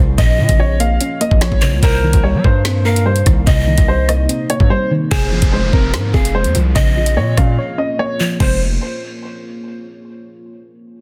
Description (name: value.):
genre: hip hop, drill.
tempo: 146 BPM.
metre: 4/4.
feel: half-time.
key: F minor.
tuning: A4 = 440 Hz.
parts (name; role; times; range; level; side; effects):
soft round pluck; accompaniment; 0.0-8.6 s; Bb2 to Db5; -23 LUFS; equal; chorus, low-pass filter.
deep dark ambient pad; sustained chords; 0.0-8.6 s; C3 to Db5; -30 LUFS; equal; chorus, built-in reverb.
distorted 808-style bass; bass; 0.0-8.8 s; F1 to G3; -19 LUFS; equal; distortion.
warm concert grand piano; melody; 0.2-8.6 s; Ab4 to F5; -23 LUFS; equal; low-pass filter, digital delay.
breathy large pan pipes; second line; 0.2-8.6 s; C5 to F5; -27 LUFS; equal; digital delay.
drill drum kit; drums; 0.2-8.5 s; crash cymbal, finger snaps, hi-hat, kick drum, rim click, snare drum; -17 LUFS; equal; soft clipping on snare.
downlifter; sound effects; 5.1-8.4 s; none; -31 LUFS; equal; none.
room: little or no reverb.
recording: dense, heavily limited modern master.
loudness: -14 LUFS.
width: mono.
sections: 0.0-5.1 A section; 5.1-8.4 B section; 8.4-10.0 C section.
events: drums muted 4.7-5.1; break 7.6-8.4.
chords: 0.2 Bbm; 1.8 Cm7; 5.1 Fm; 6.8 Bbm; 8.4 Fm.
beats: | 0.18 0.59 1.00 1.42 | 1.83 2.24 2.65 3.06 | 3.47 3.88 4.29 4.70 | 5.12 5.53 5.94 6.35 | 6.76 7.17 7.58 7.99 | 8.40.